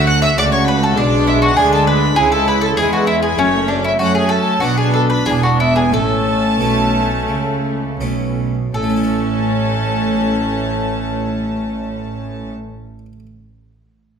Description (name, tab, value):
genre	classical, baroque-style concerto movement with solo episodes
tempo	80-100 BPM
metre	4/4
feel	straight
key	A major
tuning	A4 = 439 Hz
part	mandolin	melody	0.0-13.0 s	C#4 to F#5	-19 LUFS	left 1 dB	none
part	rich chamber violin section	melody	0.0-12.5 s	C#5 to F#6	-23 LUFS	left 1 dB	none
part	warm chamber violin section	second line	0.0-12.5 s	C#4 to F#4	-22 LUFS	left 2 dB	none
part	dark chamber viola section	accompaniment	0.0-12.5 s	G#3 to B3	-22 LUFS	equal	none
part	harpsichord	accompaniment	0.0-13.3 s	E2 to C#5	-26 LUFS	left 1 dB	none
part	dark chamber cello section	bass	0.0-12.5 s	E2 to F#3	-22 LUFS	right 4 dB	none
part	rich chamber double bass section	bass	0.0-12.5 s	E1 to F#2	-22 LUFS	right 3 dB	none
room	moderate recital hall reverb, RT60 1.6 s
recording	none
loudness	-14 LUFS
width	side -7 dB against mid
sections	0.0-8.7 A section; 8.7-11.7 B section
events	slowing down 2.2-8.7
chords	0.0 D; 1.0 G#dim/B; 2.2 C#m; 3.4 F#m; 4.6 Bm; 5.3 E5; 5.9 A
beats	0.37 | 0.97 1.57 2.17 2.78 | 3.39 4.00 4.62 5.26 | 5.92 6.59 7.29 8.01 | 8.75 9.49 10.24 10.98